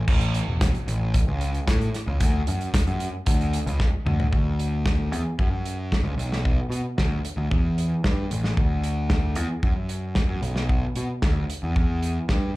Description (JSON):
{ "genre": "indie rock", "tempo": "113 BPM", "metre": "4/4", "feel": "straight", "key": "D major", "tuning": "A4 = 444 Hz", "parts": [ { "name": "fuzz picked electric bass", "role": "bass", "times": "0.0-12.5 s", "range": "E1 to B2", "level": "-24 LUFS", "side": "equal", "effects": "overdrive" }, { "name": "loose indie drum kit", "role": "drums", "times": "0.1-12.4 s", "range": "crash cymbal, hi-hat, kick drum, snare drum, toms", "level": "-24 LUFS", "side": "equal", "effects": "none" } ], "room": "little or no reverb", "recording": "live gig heard through the venue's PA, club reverb", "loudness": "-22 LUFS", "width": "side -19 dB against mid", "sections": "0.0-4.3 A section; 4.3-12.6 B section", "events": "drum fill 3.8-4.3", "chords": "none", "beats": "| 0.08 0.61 1.14 1.67 | 2.20 2.73 3.25 3.78 | 4.32 4.84 5.38 5.91 | 6.44 6.97 7.50 8.04 | 8.57 9.10 9.63 10.16 | 10.70 11.23 11.76 12.29" }